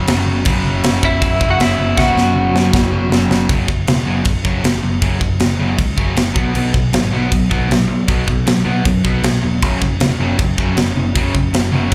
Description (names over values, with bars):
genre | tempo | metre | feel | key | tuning
punk rock | 157 BPM | 4/4 | straight | unclear | A4 = 438 Hz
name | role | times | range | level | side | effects
crunchy overdriven guitar | riff | 0.0-11.9 s | F#2 to B3 | -23 LUFS | equal | none
distorted electric guitar | riff | 0.0-3.5, 9.6-11.9 s | F#2 to F#3 | -24 LUFS | equal | distortion, slapback echo
picked electric bass | bass | 0.0-11.9 s | E1 to F#2 | -21 LUFS | equal | none
tight metal drum kit | drums | 0.1-11.9 s | crash cymbal, kick drum, snare drum | -19 LUFS | equal | none
lightly driven lead guitar | melody | 1.0-3.1 s | E4 to F#5 | -20 LUFS | equal | slapback echo
room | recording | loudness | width
little or no reverb | live gig heard through the venue's PA, club reverb | -16 LUFS | mono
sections
0.0-3.5 A section; 3.5-11.9 B section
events
drum fill 2.0-3.5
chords
0.0 F#5; 6.4 B5; 9.6 F#5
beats
0.08 | 0.46 0.84 1.22 1.60 | 1.98 2.36 2.74 3.12 | 3.50 3.88 4.26 4.64 | 5.02 5.40 5.78 6.17 | 6.55 6.93 7.31 7.70 | 8.08 8.46 8.85 9.23 | 9.61 10.00 10.38 10.77 | 11.15 11.53 11.92